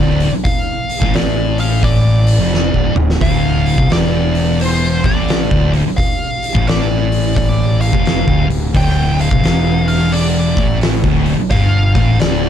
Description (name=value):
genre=stoner and doom metal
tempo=87 BPM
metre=4/4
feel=swing 64% on 8ths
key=D minor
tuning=A4 = 440 Hz
part: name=fuzz lead guitar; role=melody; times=0.0-12.5 s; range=C5 to G5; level=-21 LUFS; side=equal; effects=wah, distortion
part: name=ensemble organ-string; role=sustained chords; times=0.0-12.5 s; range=D3 to A3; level=-31 LUFS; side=equal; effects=none
part: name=thick fuzz guitar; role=riff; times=0.0-12.5 s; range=D2 to C3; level=-18 LUFS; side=left 7 dB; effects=distortion
part: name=thick fuzz guitar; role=riff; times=0.0-12.5 s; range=D2 to C3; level=-19 LUFS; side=right 8 dB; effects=distortion
part: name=fuzz fingered electric bass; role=bass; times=0.0-12.5 s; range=D1 to C2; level=-19 LUFS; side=equal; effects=overdrive
part: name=oversized low-tuned drum kit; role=drums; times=0.2-12.4 s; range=hi-hat, kick drum, snare drum, toms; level=-17 LUFS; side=equal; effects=none
room=little or no reverb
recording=dark, warm production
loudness=-12 LUFS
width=side -9 dB against mid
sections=0.0-12.5 A section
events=drum fill 2.5-3.2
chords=0.0 Dm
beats=| 0.45 1.14 1.83 2.52 | 3.22 3.91 4.60 5.29 | 5.98 6.67 7.36 8.05 | 8.74 9.43 10.12 10.81 | 11.51 12.20